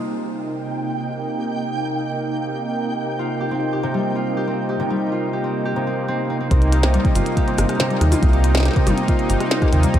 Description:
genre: IDM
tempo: 140 BPM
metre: 4/4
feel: straight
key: C minor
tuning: A4 = 441 Hz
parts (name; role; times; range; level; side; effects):
- warm analog pad; sustained chords; 0.0-10.0 s; C3 to Eb4; -24 LUFS; right 1 dB; chorus, tremolo
- concert harp; arpeggios; 0.0-10.0 s; C3 to C5; -24 LUFS; left 1 dB; ping-pong delay
- flickering grainy texture; texture; 0.4-6.5 s; G5; -31 LUFS; right 4 dB; built-in reverb
- round analog bass; bass; 6.5-10.0 s; G1 to Eb2; -17 LUFS; equal; none
- electronic kick drum; drums; 6.5-10.0 s; none; -19 LUFS; equal; studio reverb
- glitchy drum kit; drums; 6.5-10.0 s; cabasa, hi-hat, rim click, snare drum, toms; -26 LUFS; left 1 dB; overdrive, low-pass filter on hats, studio reverb, low-pass filter on perc, low-pass filter on snare, low-pass filter on toms, ping-pong delay
room: light reverb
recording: none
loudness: -18 LUFS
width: side -11 dB against mid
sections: 0.0-6.5 A section; 6.5-10.0 B section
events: filter sweep on analog synth pad 0.0-6.5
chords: 0.0 Cm7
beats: 0.08 0.51 0.94 | 1.37 1.80 2.23 2.65 | 3.08 3.51 3.94 4.37 | 4.80 5.22 5.65 6.08 | 6.51 6.94 7.37 7.80 | 8.22 8.65 9.08 9.51 | 9.94

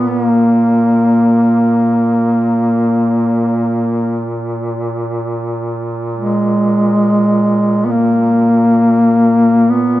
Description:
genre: caucasian folk, Caucasian lament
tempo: free time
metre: none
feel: none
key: unclear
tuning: A4 = 439 Hz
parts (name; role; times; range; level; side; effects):
- mellow duduk; melody; 0.0-10.0 s; Ab3 to Cb4; -11 LUFS; equal; none
- warm duduk; drone; 0.0-10.0 s; Bb2; -20 LUFS; right 2 dB; none
room: moderate recital hall reverb, RT60 1.7 s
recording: minimal, uncompressed stereo recording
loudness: -11 LUFS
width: side -15 dB against mid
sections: 0.0-10.0 A section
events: none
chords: none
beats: free time

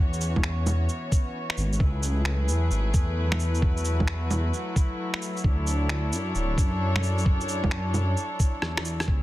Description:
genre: future garage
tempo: 132 BPM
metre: 4/4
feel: swing 67% on 16ths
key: unclear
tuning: A4 = 439 Hz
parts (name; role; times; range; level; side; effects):
- warm studio string section; sustained chords; 0.0-9.2 s; E3 to C#5; -31 LUFS; left 1 dB; sidechain pumping
- dark detuned saw bass; bass; 0.0-9.2 s; D1 to F#2; -26 LUFS; equal; sidechain pumping
- electronic shaker, bongos, finger snaps and rim click; drums; 0.1-9.1 s; none; -30 LUFS; right 1 dB; small room ambience, soft clipping on snare
- electronic kick drum; drums; 0.4-9.2 s; none; -23 LUFS; equal; small room ambience
room: digital ambience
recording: dense, heavily limited modern master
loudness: -23 LUFS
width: side -16 dB against mid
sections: 0.0-9.1 A section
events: drum fill 8.6-9.1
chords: 0.0 C#m7; 1.8 F#m11; 5.4 Dmaj9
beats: 0.44 0.90 1.35 | 1.80 2.26 2.71 3.17 | 3.62 4.08 4.53 4.99 | 5.44 5.90 6.35 6.80 | 7.26 7.71 8.17 8.62 | 9.08

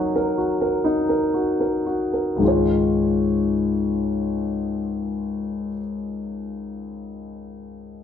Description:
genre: pop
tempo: 35-44 BPM (dotted quarters)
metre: 6/8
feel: straight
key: Db major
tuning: A4 = 440 Hz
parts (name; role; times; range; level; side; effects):
- warm concert grand piano; accompaniment; 0.0-8.0 s; Db2 to Db5; -21 LUFS; left 2 dB; none
room: moderate large studio reverb, RT60 0.9 s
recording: band playing live in one room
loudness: -20 LUFS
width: side -8 dB against mid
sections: 0.0-2.4 A section; 2.4-5.8 B section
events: slowing down 0.0-2.4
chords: 0.0 Ebm/Gb; 2.4 Dbadd9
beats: 0.84 | 2.41 4.09

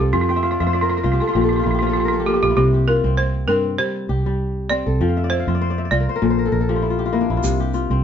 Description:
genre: west african traditional, West African string and xylophone music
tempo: 99 BPM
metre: 4/4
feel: swing 55% on 16ths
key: C mixolydian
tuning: A4 = 440 Hz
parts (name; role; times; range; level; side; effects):
- balafon; melody; 0.0-7.1 s; F4 to D5; -20 LUFS; right 2 dB; none
- kora; arpeggios; 0.0-8.0 s; Bb2 to G5; -21 LUFS; left 5 dB; none
- fingered electric bass; bass; 0.0-8.0 s; Bb1 to G2; -21 LUFS; right 1 dB; none
- tube shaker; percussion; 7.4-7.8 s; none; -32 LUFS; right 5 dB; none
room: light reverb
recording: band playing live in one room, nothing above 7.6 kHz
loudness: -17 LUFS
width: side -8 dB against mid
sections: 0.0-7.4 A section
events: kora fill 0.3-2.6, 5.0-7.4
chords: 0.1 F; 1.3 Bb5; 2.6 C5; 5.0 F; 6.2 Bb; 7.4 C5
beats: | 0.13 0.74 1.35 1.96 | 2.56 3.17 3.78 4.39 | 5.00 5.61 6.22 6.83 | 7.43

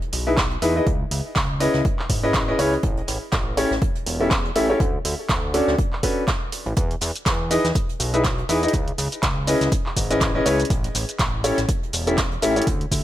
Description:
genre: piano house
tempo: 122 BPM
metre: 4/4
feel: swing 57% on 16ths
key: unclear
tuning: A4 = 439 Hz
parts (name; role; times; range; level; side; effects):
- vintage brush drum kit; drums; 0.0-13.0 s; hi-hat, snare drum; -33 LUFS; right 2 dB; sidechain pumping on hats, high-pass filter on hats, high-pass filter on snare, high-pass filter on room
- fat analog bass; bass; 0.1-13.0 s; E1 to E2; -26 LUFS; equal; tube saturation, sidechain pumping
- punchy analog drum machine; drums; 0.1-13.0 s; handclaps, hi-hat, shaker; -26 LUFS; right 1 dB; none
- bright upright piano; riff; 0.3-12.7 s; C#4 to E5; -22 LUFS; left 1 dB; sidechain pumping, tape echo
- electronic kick drum; drums; 0.4-13.0 s; none; -24 LUFS; equal; none
room: small room ambience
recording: none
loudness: -19 LUFS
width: side -13 dB against mid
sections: 0.0-13.0 A section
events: none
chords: 0.0 Emaj7; 0.9 C#m7; 2.8 A7; 4.8 Dmaj7; 6.8 Emaj7; 8.7 C#m7; 10.7 A7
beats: 0.38 | 0.87 1.36 1.85 2.34 | 2.83 3.33 3.82 4.31 | 4.80 5.29 5.79 6.28 | 6.77 7.26 7.75 8.24 | 8.74 9.23 9.72 10.21 | 10.70 11.20 11.69 12.18 | 12.67

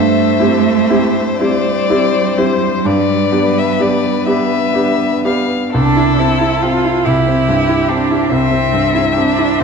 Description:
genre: classical, slow romantic movement for piano quartet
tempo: 40-48 BPM (dotted quarters)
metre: 12/8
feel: rubato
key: C major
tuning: A4 = 441 Hz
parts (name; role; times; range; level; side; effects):
- warm violin; melody; 0.0-9.6 s; G4 to F5; -18 LUFS; left 9 dB; none
- rich cello; second line; 0.0-9.6 s; G3 to F4; -17 LUFS; right 6 dB; none
- rich violin; second line; 0.0-9.5 s; B4 to G5; -23 LUFS; left 3 dB; none
- clear concert grand piano; accompaniment; 0.0-9.6 s; C2 to G4; -15 LUFS; equal; none
room: wet scoring stage reverb, RT60 1.9 s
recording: dark, warm production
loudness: -11 LUFS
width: side -5 dB against mid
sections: 0.0-5.7 A section; 5.7-9.6 B section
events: none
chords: 0.0 C/G; 2.9 G; 5.7 C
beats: 1.40 2.85 4.27 | 5.73 7.05 8.30 9.59

